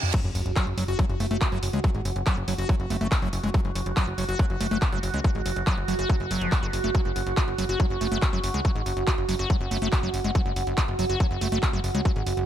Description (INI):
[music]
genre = psychedelic trance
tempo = 141 BPM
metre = 4/4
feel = straight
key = F# minor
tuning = A4 = 440 Hz
[part]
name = techno drum kit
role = drums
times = 0.0-12.5 s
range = crash cymbal, handclaps, hi-hat, toms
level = -32 LUFS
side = equal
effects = overdrive, studio reverb
[part]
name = reverse cymbal and sub drop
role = sound effects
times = 0.0-1.8 s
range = none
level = -34 LUFS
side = right 2 dB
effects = none
[part]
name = overtone-sweeping drone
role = sustained chords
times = 0.2-12.5 s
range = F#4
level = -32 LUFS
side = right 5 dB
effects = chorus, built-in reverb, sidechain pumping
[part]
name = liquid acid bass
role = riff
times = 0.1-12.1 s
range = E#3 to F#4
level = -31 LUFS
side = moving between left 5 dB and right 1 dB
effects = chorus, auto-pan, cassette tape, sidechain pumping, ping-pong delay
[part]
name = electronic kick drum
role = drums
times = 0.1-12.1 s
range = none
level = -24 LUFS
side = equal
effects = distortion, overdrive, studio reverb
[part]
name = plucky analog bass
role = bass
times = 0.2-12.4 s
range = F#1 to C#2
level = -29 LUFS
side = equal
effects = high-pass filter
[sound]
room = digital ambience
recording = none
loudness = -23 LUFS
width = side -10 dB against mid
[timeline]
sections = 0.1-12.5 A section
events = drop 0.1-12.5; impact 0.1-1.8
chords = 0.1 F#5